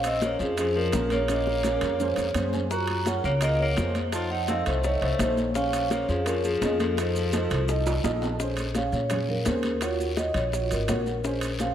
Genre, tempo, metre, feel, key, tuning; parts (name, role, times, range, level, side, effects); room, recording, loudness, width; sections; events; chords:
Afro-Cuban jazz; 169 BPM; 4/4; straight; Bb minor; A4 = 442 Hz
vibraphone with medium mallets; melody; 0.0-11.7 s; Ab4 to Bb5; -28 LUFS; equal; analog delay
clear tenor saxophone; second line; 0.0-8.0 s; F3 to Gb4; -33 LUFS; left 2 dB; analog delay
warm upright piano; accompaniment; 0.0-11.7 s; Db4 to A5; -31 LUFS; right 2 dB; analog chorus
upright bass; bass; 0.0-11.7 s; Ab1 to Bb2; -29 LUFS; equal
congas; percussion; 0.0-11.7 s; -33 LUFS; left 1 dB
maracas; percussion; 0.0-11.7 s; -43 LUFS; right 4 dB
timbales; percussion; 0.0-11.7 s; -36 LUFS; right 4 dB
bongos; percussion; 0.2-11.7 s; -38 LUFS; left 7 dB
guiro; percussion; 0.2-11.7 s; -42 LUFS; left 4 dB
moderate lush hall reverb, RT60 1.8 s; dreamy mix soaked in reverb; -23 LUFS; side -10 dB against mid
0.0-8.4 A section; 8.4-11.7 B section
drum fill 1.3-2.7, 7.9-8.4; upright piano fill 2.2-2.7, 7.9-8.4; vibraphone solo 8.4-11.7
0.0 Bbm7; 2.7 Gbmaj7; 4.1 F7; 5.6 Bbm7; 7.0 F7; 8.4 Bbm7; 9.8 Ebm7; 11.2 Bbm7